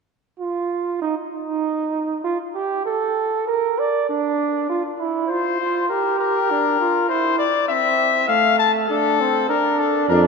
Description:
classical, imitative canzona for brass ensemble; 99 BPM; 4/4; straight; A4 = 438 Hz
warm flugelhorn; second line; 0.4-10.3 s; A3 to D5; -21 LUFS; right 5 dB
warm trumpet; melody; 5.3-10.2 s; A4 to A5; -18 LUFS; left 7 dB
warm bass trombone; bass; 10.1-10.3 s; F2; -15 LUFS; equal
wet church reverb, RT60 3.3 s; -18 LUFS; side -4 dB against mid
0.0-10.3 A section
0.0 N.C.; 4.7 F5; 5.9 Gm; 7.1 C/E; 8.3 F/A; 9.5 Bb/D
0.39 1.01 1.62 | 2.24 2.85 3.46 4.07 | 4.68 5.29 5.89 6.49 | 7.09 7.69 8.29 8.90 | 9.50 10.10

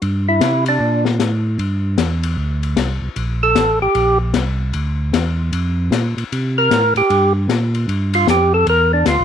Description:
soul jazz organ trio; 153 BPM; 4/4; swing 64% on 8ths; G dorian; A4 = 440 Hz
tonewheel organ; bass; 0.0-9.2 s; A1 to C3; -18 LUFS; equal; overdrive, slow rotary speaker
open jazz drum kit; drums; 0.0-9.2 s; hi-hat, ride cymbal, snare drum; -22 LUFS; left 8 dB
percussive tonewheel organ; melody; 0.3-1.0, 3.4-4.2, 6.6-9.2 s; D4 to Bb4; -14 LUFS; right 1 dB; slow rotary speaker, overdrive
light reverb; 1960s-style stereo; -14 LUFS; side -8 dB against mid
0.0-9.2 A section
tonewheel organ solo 0.0-9.2
0.0 Gm7; 6.3 C5; 7.9 Gm7
| 0.02 0.41 0.81 1.20 | 1.60 1.99 2.38 2.78 | 3.17 3.56 3.96 4.35 | 4.74 5.14 5.53 5.92 | 6.31 6.71 7.10 7.49 | 7.88 8.27 8.66 9.05

